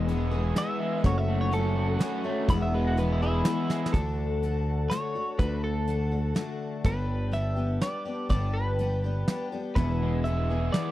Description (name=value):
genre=folk rock and heartland rock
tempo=124 BPM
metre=3/4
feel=straight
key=unclear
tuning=A4 = 440 Hz
part: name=picked twelve-string acoustic guitar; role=accompaniment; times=0.0-10.9 s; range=E2 to G#4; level=-32 LUFS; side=left 4 dB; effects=none
part: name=mellow tonewheel organ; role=sustained chords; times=0.0-10.9 s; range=G#4 to E6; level=-40 LUFS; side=equal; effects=slow rotary speaker
part: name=crunchy overdriven guitar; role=riff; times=0.0-3.9, 9.8-10.9 s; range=E2 to G#4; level=-31 LUFS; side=right 1 dB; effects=none
part: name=picked electric bass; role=bass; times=0.0-10.7 s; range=E1 to D2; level=-28 LUFS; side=equal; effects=none
part: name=soft brush drum kit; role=drums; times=0.1-10.8 s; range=hi-hat, kick drum, snare drum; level=-25 LUFS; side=right 1 dB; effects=none
part: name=twelve-string electric guitar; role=melody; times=0.6-10.9 s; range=E4 to B5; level=-33 LUFS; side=equal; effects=none
room=studio reverb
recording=dry, close 1970s-style studio recording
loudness=-25 LUFS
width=side -15 dB against mid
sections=0.0-3.9 A section; 3.9-10.9 B section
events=clean electric guitar solo 0.0-3.9; drum fill 3.7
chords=0.0 E; 1.0 F#m; 2.5 E; 3.9 D; 6.9 G; 9.8 E